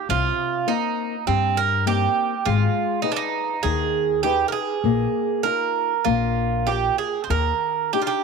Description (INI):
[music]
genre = fado-style ballad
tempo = 100 BPM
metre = 4/4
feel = uneven beats, rubato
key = unclear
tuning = A4 = 440 Hz
[part]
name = Irish bouzouki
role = melody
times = 0.0-8.2 s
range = C4 to C5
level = -22 LUFS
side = right 9 dB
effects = none
[part]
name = nylon-string guitar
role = accompaniment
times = 0.1-8.2 s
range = C3 to D5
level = -27 LUFS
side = left 16 dB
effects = none
[part]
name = upright bass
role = bass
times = 0.1-7.5 s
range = Ab1 to G2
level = -24 LUFS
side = left 3 dB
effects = tube saturation
[sound]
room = moderate spring reverb, RT60 2.8 s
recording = 1960s-style stereo with parts hard left and right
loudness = -20 LUFS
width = side -5 dB against mid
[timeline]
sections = 0.0-8.2 A section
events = none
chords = 0.1 Cm7; 2.5 Abm; 4.9 Bbsus4; 6.1 Bb; 7.3 Ebmaj7